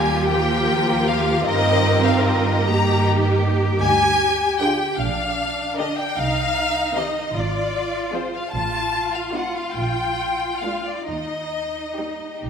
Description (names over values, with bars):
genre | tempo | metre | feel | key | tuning
classical, slow romantic movement for string orchestra | 51 BPM (dotted quarters) | 6/8 | rubato | Eb major | A4 = 440 Hz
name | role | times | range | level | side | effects
warm studio violin section | melody | 0.0-12.4 s | C5 to Bb5 | -22 LUFS | left 3 dB | none
rich studio violin section | second line | 0.0-12.5 s | D4 to Bb4 | -28 LUFS | left 2 dB | none
rich studio viola section | accompaniment | 0.0-12.3 s | D3 to D4 | -26 LUFS | right 2 dB | none
rich studio double bass section | bass | 0.0-12.5 s | Ab1 to G2 | -24 LUFS | right 2 dB | none
warm studio cello section | bass | 0.0-12.5 s | D4 to Bb4 | -25 LUFS | right 1 dB | none
room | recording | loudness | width
moderate scoring stage reverb, RT60 1.9 s | none | -18 LUFS | side -7 dB against mid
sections
0.0-12.5 A section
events
none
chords
0.0 Eb; 1.5 Eb/G; 3.8 Ddim; 5.0 Gm/Bb; 6.2 Cm7; 7.4 Fm/Ab; 8.5 Adim7; 9.8 Bb7; 11.1 Eb